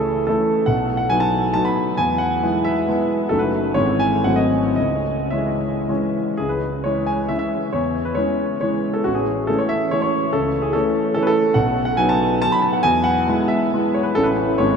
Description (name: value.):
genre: classical, romantic triple-time dance for piano with dotted rhythms.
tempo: 103-156 BPM.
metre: 3/4.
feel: rubato.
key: C# minor.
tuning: A4 = 440 Hz.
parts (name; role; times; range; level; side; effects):
warm concert grand piano; solo; 0.0-14.8 s; F#1 to B5; -17 LUFS; equal; none.
room: wet huge ambient reverb, RT60 8.4 s.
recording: in a vast, echoing space.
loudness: -17 LUFS.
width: side -6 dB against mid.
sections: 0.0-6.4 A section; 6.4-14.8 A section.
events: none.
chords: 0.0 A/C#; 0.7 B; 2.0 E; 3.3 D#dim/F#; 3.7 C#m/G#; 4.2 G#7b9; 4.8 C#m; 7.7 C#m/E; 9.0 A; 10.3 A/C#; 11.6 B; 12.8 E; 14.2 A.